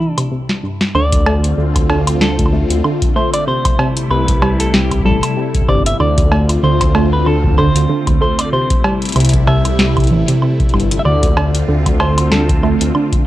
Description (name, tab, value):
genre	IDM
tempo	95 BPM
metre	4/4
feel	swing 56% on 16ths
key	D minor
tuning	A4 = 440 Hz
part	semi-hollow electric guitar	melody	0.0-12.9 s	E4 to E5	-21 LUFS	equal	tape echo
part	phased analog pad	sustained chords	0.0-13.3 s	C2 to F4	-21 LUFS	left 1 dB	phaser, chorus
part	warbly dusty pluck	arpeggios	0.0-13.1 s	C2 to A3	-18 LUFS	right 2 dB	chorus, cassette tape, tape echo
part	booming analog drum machine	drums	0.2-13.2 s	cowbell, hi-hat, snare drum, woodblock	-18 LUFS	equal	studio ambience
part	dark detuned saw bass	bass	0.9-12.9 s	G1 to D2	-16 LUFS	equal	none
part	electronic kick drum	drums	1.1-13.2 s	none	-17 LUFS	equal	studio ambience
room	little or no reverb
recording	dry, gritty hardware recording, transformer saturation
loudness	-12 LUFS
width	side -15 dB against mid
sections	0.9-13.3 A section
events	break 0.3-0.9; drum fill 0.3-0.9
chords	0.0 C6; 0.9 Dm7; 3.5 C6; 6.0 Dm7; 8.5 C6; 11.1 Dm7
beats	0.32 | 0.95 1.58 2.21 2.84 | 3.48 4.11 4.74 5.37 | 6.00 6.63 7.26 7.90 | 8.53 9.16 9.79 10.42 | 11.05 11.69 12.32 12.95